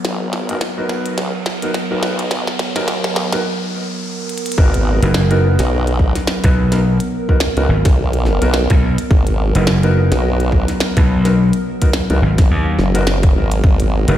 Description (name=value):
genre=glitch hop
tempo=106 BPM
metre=4/4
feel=swing 58% on 16ths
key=G# minor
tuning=A4 = 440 Hz
part: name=warbly tape-like pad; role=sustained chords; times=0.0-14.2 s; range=F#3 to D#5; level=-23 LUFS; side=equal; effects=chorus, built-in reverb, vintage 12-bit sampler grit, sidechain pumping
part: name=formant-sweep wobble bass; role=bass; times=0.0-14.1 s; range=F#1 to D#2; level=-17 LUFS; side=equal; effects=chorus, high-pass filter
part: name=glitchy drum kit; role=drums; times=0.0-14.2 s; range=hi-hat, snare drum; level=-23 LUFS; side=equal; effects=none
part: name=riser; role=sound effects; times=0.0-4.6 s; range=none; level=-29 LUFS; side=left 1 dB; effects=none
part: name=clear grand piano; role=stabs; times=0.5-14.2 s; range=B3 to B4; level=-22 LUFS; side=left 1 dB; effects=sidechain pumping, digital delay
part: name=electronic kick drum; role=drums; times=4.6-13.8 s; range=none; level=-12 LUFS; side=equal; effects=none
part: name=gritty slap bass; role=bass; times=5.0-14.2 s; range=F#1 to D#2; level=-14 LUFS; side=equal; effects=overdrive
room=light reverb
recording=played on a big sound system in a bare room, stone room reverb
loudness=-13 LUFS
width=side -12 dB against mid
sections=0.0-4.6 A section; 4.6-14.2 B section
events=build-up 0.0-4.6; drum fill 0.0-3.4, 4.3; riser 0.0-4.6; break 3.4-4.6; drop 4.6-14.2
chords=0.0 G#m9 (rootless); 4.6 G#m9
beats=| 0.05 0.62 1.18 1.75 | 2.32 2.88 3.45 4.01 | 4.58 5.15 5.71 6.28 | 6.84 7.41 7.98 8.54 | 9.11 9.67 10.24 10.81 | 11.37 11.94 12.50 13.07 | 13.64